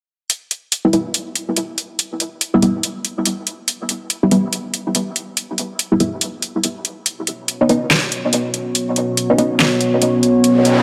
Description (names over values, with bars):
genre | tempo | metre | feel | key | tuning
deep dubstep | 142 BPM | 4/4 | swing 59% on 16ths, half-time | E dorian | A4 = 436 Hz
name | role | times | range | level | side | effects
deep house drum kit | drums | 0.3-10.8 s | hi-hat, snare drum | -20 LUFS | equal | overdrive, studio reverb
filtered dub chord stab | stabs | 0.8-9.6 s | G3 to E4 | -21 LUFS | equal | phaser, subtle chorus, dub echo
dark analog pad | sustained chords | 7.1-10.8 s | B3 to C#5 | -19 LUFS | equal | chorus
riser | sound effects | 10.5-10.8 s | none | -21 LUFS | equal | none
room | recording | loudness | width
moderate lush hall reverb, RT60 2.1 s | dry, gritty hardware recording | -18 LUFS | mono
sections
0.3-10.8 A section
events
filter sweep on synth stab 0.3-10.8; riser 10.5-10.8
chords
0.3 Em; 7.1 Badd9